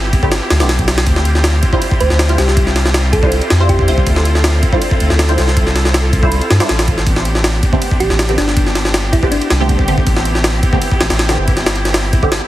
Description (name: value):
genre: drum and bass, jungle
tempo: 160 BPM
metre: 4/4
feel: straight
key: D minor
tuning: A4 = 440 Hz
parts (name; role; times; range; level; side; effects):
- bright studio string section; sustained chords; 0.0-12.5 s; B3 to A4; -21 LUFS; equal; none
- soft dub sub bass; bass; 0.0-12.4 s; G1 to G2; -15 LUFS; equal; none
- jungle sampler-style drum kit; drums; 0.1-12.4 s; kick drum, ride cymbal, snare drum; -14 LUFS; equal; none
- filtered dub chord stab; stabs; 0.2-12.3 s; D3 to C5; -21 LUFS; right 1 dB; phaser, ensemble chorus, vintage 12-bit sampler grit, dub echo
- thumb-piano-like synth pluck; melody; 2.0-4.1, 8.0-9.8 s; D4 to C5; -20 LUFS; equal; chorus, vintage 12-bit sampler grit, dub echo
room: light reverb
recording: heavily compressed radio sound, vinyl crackle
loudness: -11 LUFS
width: side -14 dB against mid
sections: 0.0-12.5 A section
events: break 12.3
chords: 0.0 Am11; 1.1 Dm11; 7.1 Am11